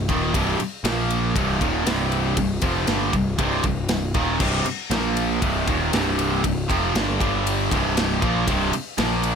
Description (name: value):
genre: hard rock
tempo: 118 BPM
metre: 4/4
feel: straight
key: unclear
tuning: A4 = 439 Hz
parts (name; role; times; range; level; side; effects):
- cranked stack guitar; riff; 0.0-9.4 s; C2 to Bb3; -26 LUFS; right 10 dB; overdrive, phaser
- distorted electric guitar; riff; 0.0-9.4 s; C2 to Bb3; -26 LUFS; equal; overdrive
- scooped high-gain guitar; riff; 0.0-9.4 s; C2 to Bb3; -27 LUFS; left 11 dB; distortion
- fuzz picked electric bass; bass; 0.0-9.4 s; C1 to Bb1; -27 LUFS; equal; overdrive
- tight metal drum kit; drums; 0.1-9.4 s; crash cymbal, kick drum, ride cymbal, snare drum; -26 LUFS; equal; none
room: light reverb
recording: none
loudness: -20 LUFS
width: side -6 dB against mid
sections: 0.0-9.4 A section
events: none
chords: 0.0 C5; 0.8 Bb5; 1.4 C5; 4.9 Bb5; 5.4 C5; 7.2 G5; 7.7 C5